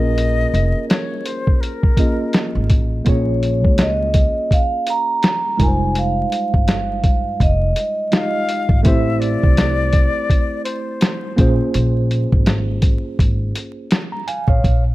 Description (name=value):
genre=hip hop, jazz-hop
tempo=83 BPM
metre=4/4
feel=swing 58% on 16ths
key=Bb minor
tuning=A4 = 440 Hz
part: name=mellow silver concert flute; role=second line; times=0.0-2.7, 8.1-12.1 s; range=Bb4 to F5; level=-24 LUFS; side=left 4 dB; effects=none
part: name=mellow tine electric piano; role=accompaniment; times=0.0-14.8 s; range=G3 to Bb5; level=-23 LUFS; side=right 2 dB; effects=medium stereo tremolo
part: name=upright bass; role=bass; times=0.0-14.9 s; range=F1 to Db2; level=-19 LUFS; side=equal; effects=none
part: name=lo-fi sampler-style drum kit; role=drums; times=0.2-14.8 s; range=hi-hat, kick drum, snare drum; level=-16 LUFS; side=equal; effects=none
part: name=vibraphone with soft mallets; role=melody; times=3.1-8.5 s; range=Db5 to Bb5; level=-20 LUFS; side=right 2 dB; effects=none
room=studio ambience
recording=dark, warm production, vinyl crackle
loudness=-15 LUFS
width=side -17 dB against mid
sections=0.0-3.1 A section; 3.1-14.6 B section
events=none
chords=0.0 Bbm7; 5.6 Fm9; 8.9 Am7; 11.4 Bbm9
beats=| 0.18 0.90 1.62 2.35 | 3.07 3.79 4.51 5.24 | 5.96 6.68 7.41 8.13 | 8.85 9.57 10.30 11.02 | 11.74 12.46 13.19 13.91 | 14.63